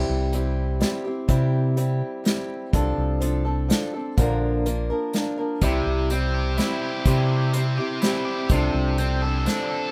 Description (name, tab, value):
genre	folk rock and heartland rock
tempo	125 BPM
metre	3/4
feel	straight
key	unclear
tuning	A4 = 439 Hz
part	picked acoustic archtop guitar	accompaniment	0.0-9.9 s	Bb2 to Bb4	-28 LUFS	equal	none
part	fingered electric bass	bass	0.0-9.5 s	Bb1 to C3	-26 LUFS	equal	none
part	unplugged drum kit	drums	0.3-9.6 s	hi-hat, kick drum, snare drum	-26 LUFS	equal	none
part	biting overdriven guitar	riff	5.6-9.9 s	C3 to A4	-30 LUFS	equal	none
room	small room ambience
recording	rough home demo mix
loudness	-23 LUFS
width	mono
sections	0.0-9.9 A section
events	none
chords	0.0 C; 2.7 F6/C; 4.2 Bb; 5.6 C; 8.5 F6/C